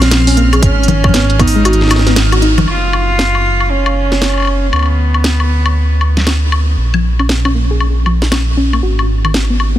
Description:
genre	IDM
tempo	117 BPM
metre	4/4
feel	swing 62% on 16ths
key	unclear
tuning	A4 = 441 Hz
part	warm cello	melody	0.0-6.5 s	B3 to E#4	-17 LUFS	right 1 dB	digital delay
part	soft round pluck	arpeggios	0.0-2.6, 6.9-9.8 s	D#3 to G#4	-18 LUFS	left 1 dB	chorus, tape echo
part	dark detuned saw bass	bass	0.0-9.8 s	F#1 to D2	-13 LUFS	equal	tube saturation
part	organic electronic drum kit	drums	0.0-9.7 s	congas, hi-hat, snare drum, woodblock	-16 LUFS	left 1 dB	studio reverb
part	bubbling stepped-filter texture	texture	0.0-2.7 s	E#6	-25 LUFS	right 5 dB	chorus, built-in reverb
part	electronic kick drum	drums	0.6-1.5 s	none	-11 LUFS	equal	studio reverb
room	light reverb, digital ambience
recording	dense, heavily limited modern master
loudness	-10 LUFS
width	side -12 dB against mid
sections	0.0-2.7 A section; 2.7-9.8 B section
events	kick drops out 1.7-2.7; band accent 2.2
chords	0.0 A#m7; 0.6 G#m7; 2.7 F#5; 4.7 Bm/D; 6.8 A#m; 8.8 G#7(no3)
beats	0.11 | 0.62 1.14 1.65 2.16 | 2.68 3.19 3.70 4.21 | 4.73 5.24 5.75 6.27 | 6.78 7.29 7.80 8.32 | 8.83 9.34

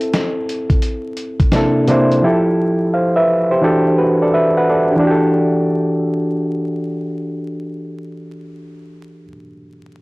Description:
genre	lo-fi hip hop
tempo	86 BPM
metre	4/4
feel	swing 65% on 16ths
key	E minor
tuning	A4 = 440 Hz
part	overdriven reed electric piano	accompaniment	0.0-10.0 s	C3 to F#5	-15 LUFS	equal	low-pass filter, cassette tape
part	dusty soul sampler-style drum kit	drums	0.0-2.2 s	hi-hat, kick drum, snare drum	-17 LUFS	equal	cassette tape
room	light reverb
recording	home recording on cassette, vinyl crackle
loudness	-13 LUFS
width	side -23 dB against mid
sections	0.0-5.0 A section; 5.0-7.8 B section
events	none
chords	0.0 C6; 1.5 C13; 2.2 Fmaj9; 3.6 Em11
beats	0.13 0.83 1.52 | 2.22 2.92 3.62 4.32 | 5.01 5.71 6.41 7.11

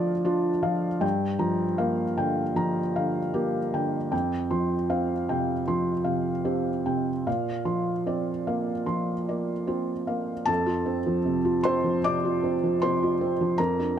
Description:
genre	neoclassical minimalist piano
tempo	77 BPM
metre	4/4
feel	rubato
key	F major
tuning	A4 = 442 Hz
part	felt-muted upright piano	solo	0.0-14.0 s	F2 to D6	-24 LUFS	equal	none
room	light reverb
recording	none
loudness	-24 LUFS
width	side -9 dB against mid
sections	0.0-10.5 A section; 10.5-14.0 B section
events	none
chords	0.0 Dm; 1.0 Gm7; 4.1 Fsus2; 7.3 Bbadd9; 10.5 F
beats	0.27 | 1.03 1.80 2.58 3.35 | 4.12 4.89 5.67 6.46 | 7.27 8.08 8.88 9.69 | 10.48 11.26 12.04 12.82 | 13.58

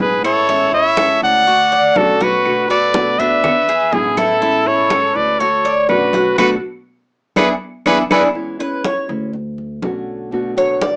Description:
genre	latin, Cuban son and guajira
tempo	122 BPM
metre	4/4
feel	straight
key	unclear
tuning	A4 = 440 Hz
part	bright trumpet	melody	0.0-8.2 s	G#4 to F#5	-17 LUFS	equal	cassette tape
part	bright trumpet	second line	0.0-8.2 s	E4 to D5	-27 LUFS	equal	none
part	nylon-string guitar	accompaniment	0.0-11.0 s	B2 to F#4	-25 LUFS	equal	none
part	Cuban tres	arpeggios	0.0-11.0 s	D4 to D5	-21 LUFS	equal	none
part	upright bass	bass	0.0-11.0 s	A1 to E2	-32 LUFS	equal	none
part	congas	percussion	0.0-11.0 s	none	-26 LUFS	equal	none
part	claves	percussion	0.2-8.2 s	none	-27 LUFS	equal	none
room	moderate small room reverb, RT60 0.5 s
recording	home recording on cassette, small speaker sound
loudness	-16 LUFS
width	mono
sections	0.0-8.4 A section; 8.4-11.0 B section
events	band accent 6.4-8.4; Cuban tres solo 8.4-11.0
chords	0.5 Amaj7; 1.5 Dmaj7; 2.5 Bm7; 3.4 E7; 4.4 Amaj7; 5.4 Dmaj7; 6.4 Bm7; 7.4 E7; 8.4 E6; 9.3 Dmaj7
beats	0.00 | 0.49 0.98 1.47 1.96 | 2.46 2.95 3.44 3.93 | 4.42 4.91 5.40 5.89 | 6.39 6.88 7.37 7.86 | 8.35 8.85 9.34 9.83 | 10.32 10.81

